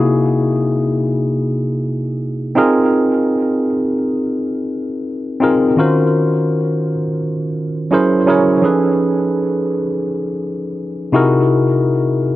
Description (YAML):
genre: R&B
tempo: free time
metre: none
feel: none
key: unclear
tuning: A4 = 440 Hz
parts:
  - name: tine electric piano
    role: solo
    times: 0.0-12.4 s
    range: C3 to Db5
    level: -14 LUFS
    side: equal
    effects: auto-pan, tape echo
room: moderate spring reverb, RT60 2.6 s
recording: worn, warbling old tape, cassette tape, warbly pitch drift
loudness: -14 LUFS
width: side -15 dB against mid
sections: 0.0-12.4 A section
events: none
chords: 0.0 C7alt; 2.6 Fm7; 5.8 Ebm7; 7.9 Gb9; 8.6 F7alt; 11.1 C7alt